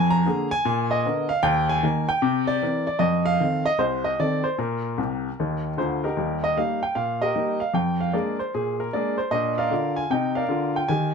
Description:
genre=jazz, stride piano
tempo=152 BPM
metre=4/4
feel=swing 66% on 8ths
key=unclear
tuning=A4 = 438 Hz
part: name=clear upright piano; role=solo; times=0.0-11.1 s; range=C2 to Bb5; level=-21 LUFS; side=equal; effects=none
room=moderate studio reverb, RT60 0.5 s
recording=none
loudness=-21 LUFS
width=side -6 dB against mid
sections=0.0-6.2 A section; 6.2-11.1 B section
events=upright piano fill 5.0-6.2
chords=0.0 Bb7/F; 0.6 Bb; 1.4 Eb5; 2.2 C7; 3.0 F7; 4.6 Bbsus2; 5.4 Bb; 6.2 Eb; 7.7 Bb7/F; 9.3 Bb

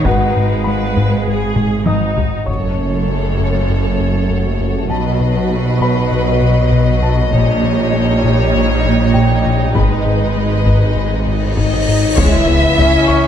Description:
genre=cinematic, hybrid orchestral and electronic film score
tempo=99 BPM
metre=4/4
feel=straight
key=unclear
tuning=A4 = 440 Hz
part: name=rich symphonic viola section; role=accompaniment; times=0.0-13.3 s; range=F#3 to B4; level=-23 LUFS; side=right 1 dB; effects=low-pass filter
part: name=rich symphonic cello section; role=bass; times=0.0-12.9 s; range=F#2 to G#3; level=-20 LUFS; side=right 4 dB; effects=none
part: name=rich symphonic double bass section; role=bass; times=0.0-12.9 s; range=F#1 to C#2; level=-21 LUFS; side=right 3 dB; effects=none
part: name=clear concert grand piano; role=texture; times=0.0-13.3 s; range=F#4 to D#6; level=-24 LUFS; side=left 2 dB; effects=tape echo
part: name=round analog bass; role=riff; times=0.1-13.3 s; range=C#2 to B3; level=-19 LUFS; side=left 4 dB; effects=low-pass filter
part: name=taiko ensemble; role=drums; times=0.1-3.6, 7.3-13.1 s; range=none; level=-20 LUFS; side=equal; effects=none
part: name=rich symphonic violin section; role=second line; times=2.5-13.3 s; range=A4 to E5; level=-19 LUFS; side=left 2 dB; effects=none
part: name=swelling detuned saw bass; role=bass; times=2.5-13.3 s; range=F#1 to C#2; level=-20 LUFS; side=equal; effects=none
part: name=cymbal swell and impact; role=sound effects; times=11.1-13.3 s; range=none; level=-24 LUFS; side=left 1 dB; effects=none
part: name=dark French horn section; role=sustained chords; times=11.6-13.3 s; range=D#4 to E4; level=-17 LUFS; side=left 2 dB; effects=low-pass filter
part: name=warm symphonic violin section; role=melody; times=12.2-12.9 s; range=C#5 to E5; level=-25 LUFS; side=left 6 dB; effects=low-pass filter
part: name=clear trombone section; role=sustained chords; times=12.2-13.3 s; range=C#3 to E3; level=-24 LUFS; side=right 5 dB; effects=none
room=light reverb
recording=none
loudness=-12 LUFS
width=side -9 dB against mid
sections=0.0-2.5 A section; 2.5-12.2 B section; 12.2-13.3 C section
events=drum fill 1.6-2.5; filter sweep 2.5-12.2; cymbal swell 11.1-12.2; impact 12.2-13.3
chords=0.1 G#m; 2.5 F#m; 4.9 B; 7.3 D#7/A#; 9.8 G#m; 12.2 C#m

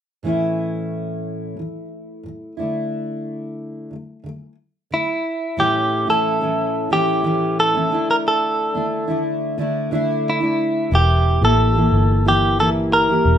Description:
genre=pop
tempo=90 BPM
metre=4/4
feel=straight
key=unclear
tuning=A4 = 440 Hz
part: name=fingerpicked steel-string acoustic guitar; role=accompaniment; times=0.2-13.4 s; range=A2 to G4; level=-22 LUFS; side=equal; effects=double-tracked left and right
part: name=direct-recorded clean electric guitar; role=melody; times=4.9-13.4 s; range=E4 to Bb4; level=-18 LUFS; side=right 1 dB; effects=none
part: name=vintage muted fingered electric bass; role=bass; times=10.9-13.4 s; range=E1 to A1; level=-17 LUFS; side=equal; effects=none
room=moderate studio reverb, RT60 0.5 s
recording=rough home demo mix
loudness=-17 LUFS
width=side -9 dB against mid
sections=0.2-5.6 A section; 5.6-13.4 B section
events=none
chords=0.2 A; 2.6 Dsus2; 5.6 A; 7.9 Dsus2; 10.9 Edim

